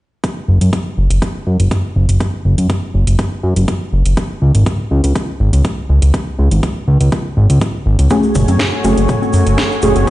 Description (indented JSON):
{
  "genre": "progressive house",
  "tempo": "122 BPM",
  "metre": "4/4",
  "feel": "straight",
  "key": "unclear",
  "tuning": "A4 = 439 Hz",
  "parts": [
    { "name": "electronic kick drum", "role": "drums", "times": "0.2-10.1 s", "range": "none", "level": "-19 LUFS", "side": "equal", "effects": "high-pass filter on kick, high-pass filter on room" },
    { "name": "house drum kit", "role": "drums", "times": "0.2-10.1 s", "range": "hi-hat, snare drum", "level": "-24 LUFS", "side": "equal", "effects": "sidechain pumping on hats" },
    { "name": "fat analog bass", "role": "bass", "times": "0.5-10.1 s", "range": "F#1 to F#2", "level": "-11 LUFS", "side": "equal", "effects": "sidechain pumping" },
    { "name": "lush unison pad", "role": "sustained chords", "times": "8.1-10.1 s", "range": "A3 to G#5", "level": "-19 LUFS", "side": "equal", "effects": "chorus, sidechain pumping" },
    { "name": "deep mellow chord stab", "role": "stabs", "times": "8.1-10.1 s", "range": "A3 to G#4", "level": "-16 LUFS", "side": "equal", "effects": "chorus, sidechain pumping, digital delay" },
    { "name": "cabasa", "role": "percussion", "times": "8.1-10.1 s", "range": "none", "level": "-33 LUFS", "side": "left 2 dB", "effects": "none" },
    { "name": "electronic toms and congas", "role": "percussion", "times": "8.4-10.1 s", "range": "none", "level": "-21 LUFS", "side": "left 2 dB", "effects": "sidechain pumping on toms, sidechain pumping on perc" }
  ],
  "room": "digital ambience",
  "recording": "played on a big sound system in a bare room, stone room reverb, nothing above 10.5 kHz",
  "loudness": "-12 LUFS",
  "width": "side -16 dB against mid",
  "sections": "0.2-10.1 A section",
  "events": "filter sweep on analog synth bass 0.2-10.1",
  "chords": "0.2 N.C.; 4.2 C#5; 8.1 F#madd9"
}